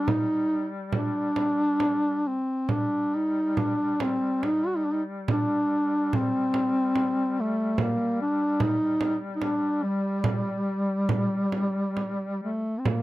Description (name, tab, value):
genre	caucasian folk, Caucasian lament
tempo	67-74 BPM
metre	3/4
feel	rubato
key	G minor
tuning	A4 = 441 Hz
part	dark duduk	melody	0.0-13.0 s	G3 to F#4	-24 LUFS	equal	none
part	warm duduk	drone	0.0-13.0 s	G3	-35 LUFS	left 3 dB	none
part	frame drum	percussion	0.1-13.0 s	none	-29 LUFS	right 3 dB	none
room	little or no reverb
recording	dry, close 1970s-style studio recording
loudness	-24 LUFS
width	side -17 dB against mid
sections	0.0-12.9 A section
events	none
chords	none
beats	| 0.08 0.93 1.81 | 2.70 3.58 4.45 | 5.30 6.14 6.97 | 7.79 8.61 9.42 | 10.24 11.09 11.97 | 12.86